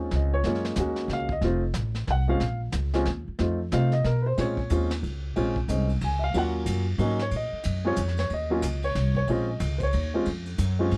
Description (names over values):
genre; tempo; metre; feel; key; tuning
jazz piano trio; 183 BPM; 3/4; swing 62% on 8ths; Bb minor; A4 = 440 Hz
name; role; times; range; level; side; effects
warm baby grand piano; melody; 0.0-10.9 s; Gb3 to Ab5; -30 LUFS; equal; none
upright bass; bass; 0.0-11.0 s; F1 to C3; -29 LUFS; equal; none
vintage brush drum kit; drums; 0.1-11.0 s; brushed snare drum, hi-hat, kick drum, ride cymbal, snare drum; -40 LUFS; equal; none
room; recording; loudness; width
little or no reverb; dry, close 1970s-style studio recording; -27 LUFS; mono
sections
0.0-4.4 A section; 4.4-11.0 A section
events
grand piano solo 0.0-11.0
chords
0.4 Gbmaj7; 1.4 F7; 2.4 Bbm; 3.4 F7; 4.4 Bbm9; 6.3 Ebm9; 7.3 Bbm; 8.3 Eb7(no3); 9.3 Bbm9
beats
0.11 | 0.44 0.77 1.09 | 1.42 1.75 2.08 | 2.40 2.73 3.06 | 3.39 3.72 4.04 | 4.37 4.70 5.03 | 5.36 5.68 6.01 | 6.34 6.67 6.99 | 7.32 7.65 7.97 | 8.30 8.63 8.96 | 9.28 9.61 9.94 | 10.26 10.59 10.91